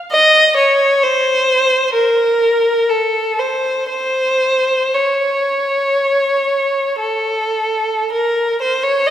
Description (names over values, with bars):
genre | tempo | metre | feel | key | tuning
classical, free, expressive piece for unaccompanied violin | 47-68 BPM | 4/4 | rubato | unclear | A4 = 440 Hz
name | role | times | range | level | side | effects
rich violin | solo | 0.1-9.1 s | A4 to Eb5 | -13 LUFS | equal | none
room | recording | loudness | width
wet concert hall reverb, RT60 2.2 s | none | -13 LUFS | side -10 dB against mid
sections
0.0-8.1 A section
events
none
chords
none